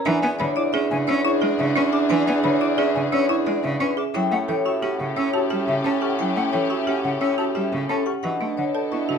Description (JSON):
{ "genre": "classical, minimalist pattern music", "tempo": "176 BPM", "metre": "6/4", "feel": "straight", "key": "unclear", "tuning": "A4 = 441 Hz", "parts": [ { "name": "vibraphone with medium hard mallets", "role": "melody", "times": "0.0-9.1 s", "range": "G4 to A#5", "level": "-27 LUFS", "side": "left 8 dB", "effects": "none" }, { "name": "folk marimba with hard mallets", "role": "arpeggios", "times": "0.0-9.2 s", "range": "C#4 to B4", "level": "-26 LUFS", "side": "right 6 dB", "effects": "none" }, { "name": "mellow hollow alto flute", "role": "second line", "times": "0.1-9.2 s", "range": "C#4 to D4", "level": "-27 LUFS", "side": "right 4 dB", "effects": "none" }, { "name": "clear cello", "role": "accompaniment", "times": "0.1-9.2 s", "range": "C#3 to C#4", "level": "-27 LUFS", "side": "right 1 dB", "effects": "none" }, { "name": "rich studio string section", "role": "sustained chords", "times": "0.1-9.2 s", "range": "C#4 to A4", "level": "-31 LUFS", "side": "left 5 dB", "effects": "none" }, { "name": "clear bassoon", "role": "bass", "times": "0.1-9.2 s", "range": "E2 to B2", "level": "-28 LUFS", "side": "equal", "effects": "none" }, { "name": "concert flute", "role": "arpeggios", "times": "0.2-9.0 s", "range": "E5 to E6", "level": "-30 LUFS", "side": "left 4 dB", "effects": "none" } ], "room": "wet large studio reverb, RT60 0.8 s", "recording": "none", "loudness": "-19 LUFS", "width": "side -6 dB against mid", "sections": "0.0-8.2 A section", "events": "none", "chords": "0.1 E7; 4.1 A7; 8.2 Bm9" }